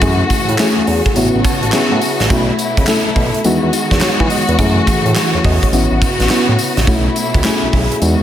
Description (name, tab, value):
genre	R&B, new jack swing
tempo	105 BPM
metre	4/4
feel	swing 65% on 16ths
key	unclear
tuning	A4 = 439 Hz
part	mellow FM electric piano	accompaniment	0.0-8.2 s	G#3 to A5	-17 LUFS	left 1 dB	chorus, slapback echo
part	warm symphonic string section	sustained chords	0.0-8.2 s	B2 to F#4	-18 LUFS	left 1 dB	none
part	smooth synth bass	bass	0.0-8.2 s	A1 to E3	-17 LUFS	equal	none
part	gated 80s drum kit	drums	0.0-8.2 s	handclaps, hi-hat, kick drum, snare drum, tambourine	-17 LUFS	right 1 dB	none
room	moderate lush hall reverb, RT60 2.9 s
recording	big arena sound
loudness	-12 LUFS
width	side -11 dB against mid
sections	0.0-8.2 A section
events	FM electric piano fill 1.2-2.3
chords	0.0 F#m7; 1.2 A69; 2.3 B7sus4; 3.4 Emaj9; 4.6 F#m7; 5.7 A69; 6.9 B7sus4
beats	| 0.02 0.59 1.16 1.73 | 2.30 2.87 3.44 4.02 | 4.59 5.16 5.73 6.30 | 6.87 7.45 8.02